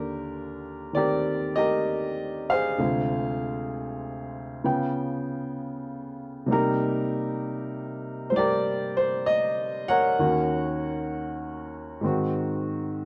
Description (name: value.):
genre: solo jazz.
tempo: 65 BPM.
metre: 4/4.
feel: swing 67% on 8ths.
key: Eb major.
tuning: A4 = 437 Hz.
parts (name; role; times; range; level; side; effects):
warm upright piano; solo; 0.0-13.1 s; D2 to G5; -27 LUFS; equal; none.
room: light reverb.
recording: close, detailed microphones.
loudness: -27 LUFS.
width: mono.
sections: 0.0-13.1 A section.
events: none.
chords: 0.0 Ebmaj7; 2.8 Dm7b5; 4.6 Db7#11; 6.5 Cm7; 10.2 Ebm7; 12.0 Ab7.